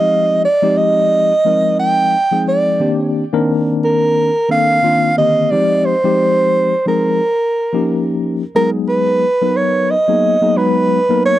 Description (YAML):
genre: jazz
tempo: 89 BPM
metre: 4/4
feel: swing 56% on 16ths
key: F dorian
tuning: A4 = 440 Hz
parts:
  - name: breathy soprano saxophone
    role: melody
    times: 0.0-11.4 s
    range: Bb4 to G5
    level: -14 LUFS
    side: right 2 dB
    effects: none
  - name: tine electric piano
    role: accompaniment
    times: 0.0-11.4 s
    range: D3 to B4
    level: -16 LUFS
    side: left 2 dB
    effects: medium stereo tremolo
room: light reverb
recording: dry, close 1970s-style studio recording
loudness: -12 LUFS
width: side -14 dB against mid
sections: 0.0-8.6 A section; 8.6-11.4 B section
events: none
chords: 0.0 Fm9; 2.8 Cm9; 5.5 Fm9; 7.2 Eb7; 8.6 G#m9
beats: | 0.44 1.11 1.79 2.47 | 3.15 3.82 4.50 5.17 | 5.85 6.53 7.20 7.88 | 8.55 9.22 9.90 10.57 | 11.24